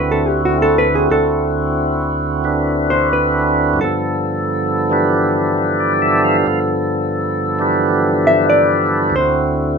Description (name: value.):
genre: jazz.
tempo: 90 BPM.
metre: 4/4.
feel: swing 68% on 8ths.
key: unclear.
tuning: A4 = 440 Hz.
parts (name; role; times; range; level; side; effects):
percussive tonewheel organ; melody; 0.0-9.8 s; D2 to F5; -15 LUFS; equal; slow rotary speaker.
hollow-body jazz guitar; accompaniment; 0.0-9.8 s; F#4 to E5; -17 LUFS; equal; none.
room: wet club reverb, RT60 0.5 s.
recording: minimal, uncompressed stereo recording.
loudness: -14 LUFS.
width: side -5 dB against mid.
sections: 0.0-9.8 A section.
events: hollow-body jazz guitar solo 0.0-9.8.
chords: 0.0 D9; 3.8 G9; 9.2 D9.